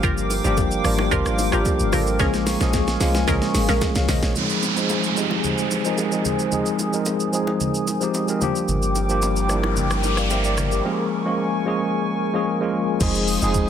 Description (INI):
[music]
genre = amapiano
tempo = 111 BPM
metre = 4/4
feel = straight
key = F minor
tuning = A4 = 439 Hz
[part]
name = mellow tine electric piano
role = accompaniment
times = 0.0-13.7 s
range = F3 to Ab5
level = -22 LUFS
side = left 1 dB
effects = slow stereo tremolo, low-pass filter
[part]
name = hollow soft pad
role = sustained chords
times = 0.0-13.7 s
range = Bb4 to Eb6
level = -28 LUFS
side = equal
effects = chorus, sidechain pumping, low-pass filter
[part]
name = glassy wavetable pluck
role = stabs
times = 0.0-3.8 s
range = Db4 to Bb4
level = -27 LUFS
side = right 2 dB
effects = chorus, tape echo
[part]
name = deep log drum bass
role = bass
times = 0.0-4.3, 13.0-13.7 s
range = F1 to C2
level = -24 LUFS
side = equal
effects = none
[part]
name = smooth R&B drum kit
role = drums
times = 0.0-13.7 s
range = crash cymbal, hi-hat, kick drum, rim click, shaker, snare drum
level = -26 LUFS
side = equal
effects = soft clipping on snare
[part]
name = congas and bongos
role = percussion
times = 0.0-10.7 s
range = none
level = -31 LUFS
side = right 2 dB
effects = none
[part]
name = downlifter and noise sweep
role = sound effects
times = 4.4-11.9 s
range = none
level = -28 LUFS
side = right 3 dB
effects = none
[part]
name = saturated sub bass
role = bass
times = 8.7-10.8 s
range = G1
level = -24 LUFS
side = equal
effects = none
[sound]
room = light reverb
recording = dense, heavily limited modern master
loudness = -19 LUFS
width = side -9 dB against mid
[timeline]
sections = 0.0-4.4 A section; 4.4-13.0 B section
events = drop 0.0-4.4; drum fill 2.2-4.4; filter sweep 4.4-13.0; noise sweep 9.1-13.0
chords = 0.0 Gm7; 2.2 Bbm7; 4.4 Fm7; 8.4 Gm7; 10.8 Bbm7; 13.0 Fm7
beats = | 0.04 0.57 1.12 1.66 | 2.20 2.74 3.28 3.82 | 4.36 4.90 5.44 5.98 | 6.52 7.06 7.60 8.14 | 8.68 9.22 9.76 10.30 | 10.85 11.39 11.93 12.47 | 13.01 13.55